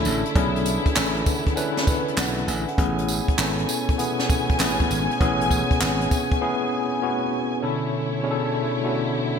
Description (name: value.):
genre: R&B, new jack swing.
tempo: 99 BPM.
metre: 4/4.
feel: swing 67% on 16ths.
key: B dorian.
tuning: A4 = 441 Hz.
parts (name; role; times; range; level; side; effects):
tine electric piano; accompaniment; 0.0-9.4 s; B2 to G#5; -24 LUFS; left 2 dB; medium stereo tremolo.
dark studio string section; sustained chords; 0.0-9.4 s; B2 to G#5; -28 LUFS; left 1 dB; none.
slap bass; bass; 0.1-6.1 s; G#1 to B1; -26 LUFS; right 1 dB; none.
jazz brush drum kit; drums; 0.1-6.4 s; handclaps, hi-hat, kick drum, snare drum, tambourine; -24 LUFS; right 1 dB; gated reverb.
group handclap; percussion; 1.0-6.0 s; none; barely audible; none; none.
room: moderate lush hall reverb, RT60 2.0 s, small room ambience.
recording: bright 1980s-style digital production.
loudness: -20 LUFS.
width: side -7 dB against mid.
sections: 0.0-7.6 A section; 7.6-9.4 A section.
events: break 6.4-7.6.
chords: 0.0 Bm11; 2.8 Amaj9; 7.6 Bm11.